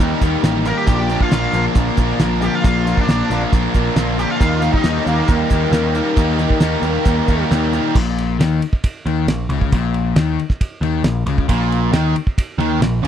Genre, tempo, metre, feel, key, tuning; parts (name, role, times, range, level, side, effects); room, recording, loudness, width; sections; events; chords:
classic rock; 136 BPM; 4/4; straight; Bb major; A4 = 443 Hz
crunchy overdriven guitar; riff; 0.0-13.1 s; Bb2 to Eb4; -21 LUFS; left 11 dB
distorted electric guitar; riff; 0.0-7.9, 11.5-13.1 s; Bb2 to Bb4; -23 LUFS; right 14 dB; overdrive
overdriven electric guitar; riff; 0.0-7.9 s; Bb2 to Eb4; -24 LUFS; right 2 dB
growling picked electric bass; bass; 0.0-13.1 s; A1 to Eb2; -20 LUFS; right 1 dB; overdrive
cloth-damped thuddy drum kit; drums; 0.0-13.1 s; crash cymbal, hi-hat, kick drum, ride cymbal, snare drum; -18 LUFS; right 1 dB
octave-fuzz lead guitar; melody; 0.7-7.5 s; Bb3 to Bb4; -23 LUFS; left 1 dB; wah, distortion, slapback echo
studio reverb; dry, close 1970s-style studio recording; -15 LUFS; side -9 dB against mid
0.0-8.0 A section; 8.0-13.1 B section
0.0 Eb; 0.9 Bb; 4.4 Eb; 8.0 Bb5